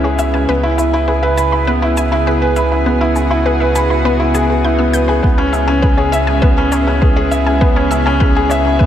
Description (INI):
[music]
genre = piano and strings electronica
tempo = 101 BPM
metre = 4/4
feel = straight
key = unclear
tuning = A4 = 440 Hz
[part]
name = lush unison pad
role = sustained chords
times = 0.0-8.9 s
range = C#3 to G#4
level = -20 LUFS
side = right 1 dB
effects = chorus, sidechain pumping
[part]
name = wide unison pluck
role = arpeggios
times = 0.0-8.9 s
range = B4 to G6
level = -22 LUFS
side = left 2 dB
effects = sidechain pumping, digital delay
[part]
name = felt-muted upright piano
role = riff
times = 0.0-8.9 s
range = B3 to B5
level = -15 LUFS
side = equal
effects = digital delay
[part]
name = warm sub bass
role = bass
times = 0.0-8.9 s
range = C#2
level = -18 LUFS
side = equal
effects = sidechain pumping
[part]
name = shaker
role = drums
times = 0.2-8.6 s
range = none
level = -31 LUFS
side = left 1 dB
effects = none
[part]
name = electronic kick drum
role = drums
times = 5.2-8.9 s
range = none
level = -13 LUFS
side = equal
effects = none
[sound]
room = moderate lush hall reverb, RT60 2.2 s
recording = dark, warm production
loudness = -11 LUFS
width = side -10 dB against mid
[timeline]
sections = 0.0-8.9 A section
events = build-up 0.0-8.9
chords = 0.5 E/C#; 5.2 C#m7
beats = | 0.49 1.09 1.68 2.28 | 2.87 3.46 4.06 4.65 | 5.25 5.84 6.43 7.03 | 7.62 8.22 8.81